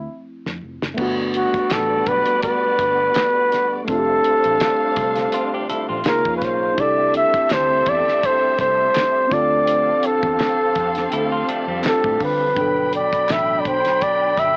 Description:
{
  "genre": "lush 1970s-style soul",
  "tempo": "83 BPM",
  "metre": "4/4",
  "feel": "swing 54% on 16ths",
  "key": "G mixolydian",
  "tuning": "A4 = 440 Hz",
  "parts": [
    { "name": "breathy flugelhorn", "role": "melody", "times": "0.0-14.6 s", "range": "E4 to E5", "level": "-20 LUFS", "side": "equal", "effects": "none" },
    { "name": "tine electric piano", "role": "accompaniment", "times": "0.0-14.6 s", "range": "B2 to A4", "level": "-29 LUFS", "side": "equal", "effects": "subtle chorus, cassette tape" },
    { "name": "vintage muted fingered electric bass", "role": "bass", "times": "0.0-14.6 s", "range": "F1 to D3", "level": "-35 LUFS", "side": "equal", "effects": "none" },
    { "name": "damped 70s drum kit", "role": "drums", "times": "0.5-14.6 s", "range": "crash cymbal, hi-hat, kick drum, snare drum", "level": "-29 LUFS", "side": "equal", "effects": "cassette tape" },
    { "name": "dark symphonic string section", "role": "second line", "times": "1.0-14.6 s", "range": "G3 to B5", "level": "-30 LUFS", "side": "equal", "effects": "cassette tape" },
    { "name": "percussive tonewheel organ", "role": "sustained chords", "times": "1.0-14.6 s", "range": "B2 to G4", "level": "-33 LUFS", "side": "equal", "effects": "slow rotary speaker, overdrive, cassette tape" },
    { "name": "group handclap", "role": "percussion", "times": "1.7-13.5 s", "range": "none", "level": "-32 LUFS", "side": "equal", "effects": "none" },
    { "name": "semi-hollow electric guitar", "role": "riff", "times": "5.3-6.2, 11.1-12.5 s", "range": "G3 to A4", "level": "-29 LUFS", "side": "equal", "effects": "cassette tape" }
  ],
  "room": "light reverb",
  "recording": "home recording on cassette, AM radio sound",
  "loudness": "-19 LUFS",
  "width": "mono",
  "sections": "1.0-14.6 A section",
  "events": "drum fill 0.0-1.0",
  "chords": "0.0 Dm9 (rootless); 1.0 Gmaj7; 3.9 F69; 6.0 C#6; 6.8 C6; 9.3 Dm7; 12.6 Gmaj7"
}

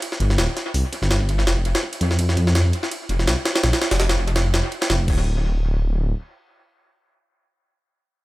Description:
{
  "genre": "drum and bass, jungle",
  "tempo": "166 BPM",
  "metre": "4/4",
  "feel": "swing 54% on 16ths",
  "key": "unclear",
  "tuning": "A4 = 440 Hz",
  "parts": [
    { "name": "jungle sampler-style drum kit", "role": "drums", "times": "0.0-5.2 s", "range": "crash cymbal, hi-hat, kick drum, ride cymbal, snare drum", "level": "-22 LUFS", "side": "equal", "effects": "high-pass filter on snare, studio ambience, high-pass filter on cymbals, high-pass filter on kick, high-pass filter on hats, dub echo" },
    { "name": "detuned saw bass", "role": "bass", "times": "0.2-6.1 s", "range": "D1 to F2", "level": "-19 LUFS", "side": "equal", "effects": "tube saturation" }
  ],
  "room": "little or no reverb",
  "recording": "echo-heavy mix",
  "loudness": "-18 LUFS",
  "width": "side -18 dB against mid",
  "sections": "0.0-5.1 A section; 5.1-8.0 B section",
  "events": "filter sweep on detuned saw bass 0.0-5.1",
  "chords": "none"
}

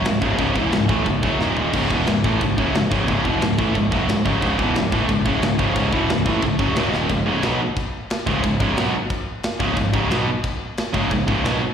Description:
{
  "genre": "heavy metal",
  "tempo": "179 BPM",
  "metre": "4/4",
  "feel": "straight",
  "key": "C# minor",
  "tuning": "A4 = 439 Hz",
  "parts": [
    { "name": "tight distorted guitar", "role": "riff", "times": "0.0-11.6 s", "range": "C#2 to B3", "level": "-24 LUFS", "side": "left 10 dB", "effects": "distortion, slapback echo" },
    { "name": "tight distorted guitar", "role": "riff", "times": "0.0-11.6 s", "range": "C#2 to B3", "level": "-22 LUFS", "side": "right 7 dB", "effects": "distortion, slapback echo" },
    { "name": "fuzz picked electric bass", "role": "bass", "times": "0.0-11.6 s", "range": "C#1 to B1", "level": "-24 LUFS", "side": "left 1 dB", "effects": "overdrive" },
    { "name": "tight metal drum kit", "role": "drums", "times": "0.0-11.5 s", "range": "china cymbal, crash cymbal, kick drum, snare drum, toms", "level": "-25 LUFS", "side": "left 1 dB", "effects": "none" }
  ],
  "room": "light reverb, small room ambience",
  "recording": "live gig heard through the venue's PA, recital hall reverb",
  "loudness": "-18 LUFS",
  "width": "side -8 dB against mid",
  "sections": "0.0-7.1 A section; 7.1-11.7 B section",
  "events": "drum fill 1.4-1.7, 6.9",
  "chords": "0.0 C#m; 1.4 D#5; 1.7 C#m; 6.8 D#5; 7.1 C#5"
}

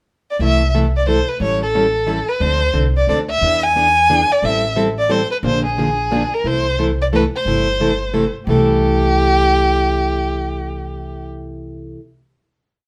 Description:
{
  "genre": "acoustic string swing (jazz manouche)",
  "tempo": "179 BPM",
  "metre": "3/4",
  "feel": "swing 60% on 8ths",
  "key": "C major",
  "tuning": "A4 = 439 Hz",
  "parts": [
    { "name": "warm violin", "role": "melody", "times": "0.3-11.2 s", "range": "G4 to G#5", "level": "-20 LUFS", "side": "equal", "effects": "none" },
    { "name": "picked plugged-in steel-string acoustic guitar", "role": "accompaniment", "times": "0.4-12.0 s", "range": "C3 to A4", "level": "-22 LUFS", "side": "equal", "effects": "none" },
    { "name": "upright bass", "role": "bass", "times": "0.4-11.9 s", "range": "G1 to E2", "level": "-23 LUFS", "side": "equal", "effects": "none" }
  ],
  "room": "moderate studio reverb, RT60 0.7 s",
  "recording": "none",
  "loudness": "-17 LUFS",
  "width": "mono",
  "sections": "0.0-0.4 pickup bar; 0.4-8.5 A section; 8.5-10.5 final chord",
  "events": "none",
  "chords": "0.4 C6; 1.4 A7; 2.4 Dm7; 3.4 E7; 4.4 Am7; 5.4 Bb7; 6.4 C6"
}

